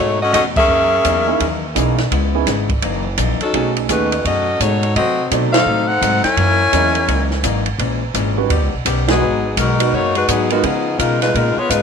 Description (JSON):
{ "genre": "jazz, big band swing", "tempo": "169 BPM", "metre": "4/4", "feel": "swing 63% on 8ths", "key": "F# mixolydian", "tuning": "A4 = 440 Hz", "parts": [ { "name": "clear saxophone section", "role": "melody", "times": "0.0-11.8 s", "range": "D#3 to G#5", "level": "-16 LUFS", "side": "left 2 dB", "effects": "tape echo" }, { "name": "archtop guitar, miked and amplified", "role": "accompaniment", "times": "0.0-11.8 s", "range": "F#2 to A#4", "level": "-24 LUFS", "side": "left 14 dB", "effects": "none" }, { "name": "upright bass", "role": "bass", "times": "0.0-11.8 s", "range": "F#1 to C#3", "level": "-20 LUFS", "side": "right 1 dB", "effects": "none" }, { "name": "open jazz drum kit", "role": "drums", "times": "0.3-11.8 s", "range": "crash cymbal, hi-hat, kick drum, ride cymbal, snare drum", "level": "-21 LUFS", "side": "right 2 dB", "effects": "none" }, { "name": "warm concert grand piano", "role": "accompaniment", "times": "1.3-10.6 s", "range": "G3 to D#5", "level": "-22 LUFS", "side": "right 13 dB", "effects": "none" } ], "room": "moderate spring reverb, RT60 1.3 s, small room ambience", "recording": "1960s-style stereo with parts hard left and right", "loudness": "-14 LUFS", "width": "side -6 dB against mid", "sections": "0.0-11.8 A section", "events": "band accent 0.5, 5.5, 9.0", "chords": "0.0 B13; 0.7 F#13; 2.1 C#m7; 2.8 F#6; 3.5 B13; 5.0 Cdim7; 6.4 F#13; 7.8 A#m7b5; 8.5 D#7alt; 9.2 G#m7; 10.6 C#13" }